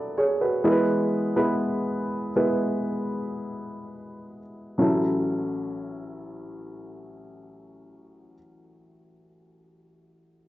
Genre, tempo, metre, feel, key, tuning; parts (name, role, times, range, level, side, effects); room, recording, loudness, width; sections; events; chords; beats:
pop; 53-66 BPM; 4/4; straight; A major; A4 = 441 Hz
warm upright piano; accompaniment; 0.0-10.5 s; A1 to D5; -24 LUFS; equal; cassette tape
moderate lush hall reverb, RT60 2.3 s; home recording on cassette, nothing above 7.8 kHz; -23 LUFS; side -15 dB against mid
0.0-4.8 A section; 4.8-9.3 B section
slowing down 0.0-4.8
0.0 Bm7/D; 0.7 E; 4.8 A6
| 0.65 1.61 2.61 3.67 | 4.78 5.91 7.03 8.15